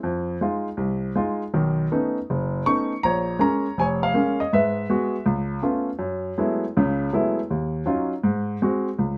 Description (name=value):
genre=solo jazz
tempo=161 BPM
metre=4/4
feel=swing 65% on 8ths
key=unclear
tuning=A4 = 440 Hz
part: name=warm baby grand piano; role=solo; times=0.0-9.2 s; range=F1 to Db6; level=-24 LUFS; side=equal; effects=none
room=light reverb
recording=none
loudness=-24 LUFS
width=mono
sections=0.0-9.0 A section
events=none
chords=0.0 Fm7; 1.5 Cb9; 3.0 Bbm7; 4.5 Eadd9/G#; 5.3 Dbaug7; 6.0 Gbm11; 7.5 Ebm9; 8.2 Ab7